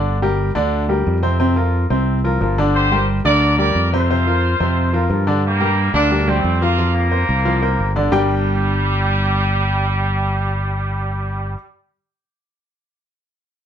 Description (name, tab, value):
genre	latin, salsa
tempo	178 BPM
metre	4/4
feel	straight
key	G minor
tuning	A4 = 439 Hz
part	clear baby grand piano	accompaniment	0.0-11.6 s	C3 to G5	-20 LUFS	equal	none
part	fingered electric bass	bass	0.0-11.5 s	G1 to G2	-18 LUFS	equal	none
part	bright trumpet section	melody	2.7-11.6 s	G3 to D5	-20 LUFS	right 1 dB	slapback echo
room	light reverb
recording	none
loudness	-15 LUFS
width	side -9 dB against mid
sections	0.0-5.4 A section; 5.4-8.1 B section; 8.1-10.8 C section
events	none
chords	0.1 Gm; 4.1 Fsus4; 5.4 Gm; 6.8 Fsus4; 8.1 Gm